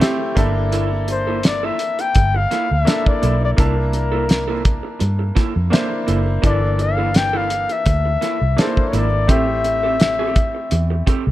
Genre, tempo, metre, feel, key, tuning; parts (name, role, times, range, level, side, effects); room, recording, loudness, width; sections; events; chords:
lush 1970s-style soul; 84 BPM; 4/4; swing 54% on 16ths; G dorian; A4 = 442 Hz
clear baby grand piano; accompaniment; 0.0-11.3 s; E3 to A5; -25 LUFS; left 1 dB
electric guitar through a small old amp; riff; 0.0-11.3 s; Bb3 to A4; -26 LUFS; right 6 dB
cloth-damped thuddy drum kit; drums; 0.0-11.3 s; hi-hat, kick drum, snare drum; -18 LUFS; equal
vintage muted fingered electric bass; bass; 0.4-11.3 s; F#1 to G2; -20 LUFS; equal
warm flugelhorn; melody; 1.1-11.2 s; Bb4 to G5; -21 LUFS; left 3 dB
light reverb; dark, warm production; -16 LUFS; side -15 dB against mid
0.0-11.3 A section
0.4 Gm69; 3.6 C13; 6.4 Gm69; 9.3 Am7